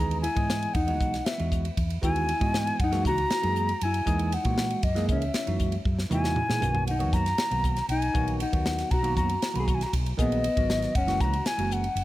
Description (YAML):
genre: electric jazz fusion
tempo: 118 BPM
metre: 4/4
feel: straight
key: F# mixolydian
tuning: A4 = 442 Hz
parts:
  - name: mellow hollow silver concert flute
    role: melody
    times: 0.0-12.0 s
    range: D#5 to B5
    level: -29 LUFS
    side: left 1 dB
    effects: none
  - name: hollow-body jazz guitar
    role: second line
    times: 0.0-12.0 s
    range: A#3 to G#4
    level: -34 LUFS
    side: left 3 dB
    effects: tape echo
  - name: bell-like tine electric piano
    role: accompaniment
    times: 0.0-12.0 s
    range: D#3 to D#5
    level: -32 LUFS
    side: right 4 dB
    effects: phaser
  - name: woody fretless electric bass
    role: bass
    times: 0.0-12.0 s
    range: F#1 to A#2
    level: -29 LUFS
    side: equal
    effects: analog chorus
  - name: crisp fusion drum kit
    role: drums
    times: 0.1-12.0 s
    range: hi-hat, kick drum, ride cymbal, snare drum, toms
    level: -29 LUFS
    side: equal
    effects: none
room: light reverb, small room ambience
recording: none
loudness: -24 LUFS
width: side -16 dB against mid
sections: 0.0-12.0 A section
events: drum fill 5.9-6.9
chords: 0.0 Emaj9; 2.8 F#13; 6.6 Bmaj7; 10.9 F#9